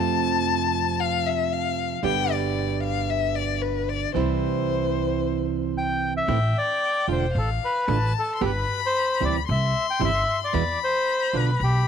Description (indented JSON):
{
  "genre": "tango",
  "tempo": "113 BPM",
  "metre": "4/4",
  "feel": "rubato",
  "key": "C major, A minor from 6.3 s",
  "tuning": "A4 = 440 Hz",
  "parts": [
    { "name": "warm violin", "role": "second line", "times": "0.0-11.9 s", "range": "B4 to C6", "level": "-27 LUFS", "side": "left 12 dB", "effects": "none" },
    { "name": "nylon-string guitar", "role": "accompaniment", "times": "0.0-11.5 s", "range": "B2 to G4", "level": "-27 LUFS", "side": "right 11 dB", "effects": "none" },
    { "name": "upright bass", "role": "bass", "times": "0.0-11.8 s", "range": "E1 to F2", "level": "-27 LUFS", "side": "equal", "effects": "tube saturation" },
    { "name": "bandoneon", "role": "melody", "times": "5.8-11.9 s", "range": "G4 to G5", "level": "-24 LUFS", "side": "left 1 dB", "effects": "none" }
  ],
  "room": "light reverb, small room ambience",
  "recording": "1960s-style stereo with parts hard left and right",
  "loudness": "-22 LUFS",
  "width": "side -7 dB against mid",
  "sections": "0.0-6.3 A section; 6.3-11.9 B section",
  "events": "violin solo 0.0-6.3",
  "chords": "0.0 F; 2.0 G; 4.1 C; 6.3 Am; 7.3 Dm/A; 8.4 G; 9.5 C; 10.5 E5"
}